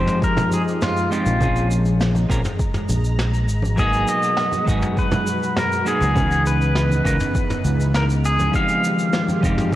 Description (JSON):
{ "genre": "sunset chillout", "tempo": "101 BPM", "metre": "4/4", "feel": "straight", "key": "F minor", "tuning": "A4 = 440 Hz", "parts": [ { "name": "pedal steel guitar", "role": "melody", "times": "0.0-9.7 s", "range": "F4 to F5", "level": "-22 LUFS", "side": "equal", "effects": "ping-pong delay" }, { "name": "semi-hollow electric guitar", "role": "accompaniment", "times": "0.0-9.8 s", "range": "Fb3 to Bb4", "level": "-24 LUFS", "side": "equal", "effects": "auto-pan, vintage 12-bit sampler grit" }, { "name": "soft string machine", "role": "sustained chords", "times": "0.0-9.8 s", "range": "Cb3 to Bb5", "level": "-28 LUFS", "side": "equal", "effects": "ensemble chorus" }, { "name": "fingered electric bass", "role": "bass", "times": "0.0-9.5 s", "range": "F1 to Db2", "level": "-20 LUFS", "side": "equal", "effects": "none" }, { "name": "vintage brush drum kit", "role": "drums", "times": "0.1-9.8 s", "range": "shaker, snare drum, toms", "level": "-27 LUFS", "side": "equal", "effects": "none" }, { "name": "electronic kick drum", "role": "drums", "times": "0.2-9.8 s", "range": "none", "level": "-23 LUFS", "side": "equal", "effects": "overdrive" }, { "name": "congas", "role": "percussion", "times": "0.4-9.4 s", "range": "none", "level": "-28 LUFS", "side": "right 1 dB", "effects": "none" } ], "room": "moderate concert hall reverb, RT60 1.7 s, small room ambience", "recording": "worn, warbling old tape, cassette tape, warbly pitch drift", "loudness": "-17 LUFS", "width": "side -14 dB against mid", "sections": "0.0-9.8 A section", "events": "none", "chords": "0.0 Fm9; 1.4 Bbm9; 3.5 Abm9; 6.2 Dbm9; 8.5 Fm9" }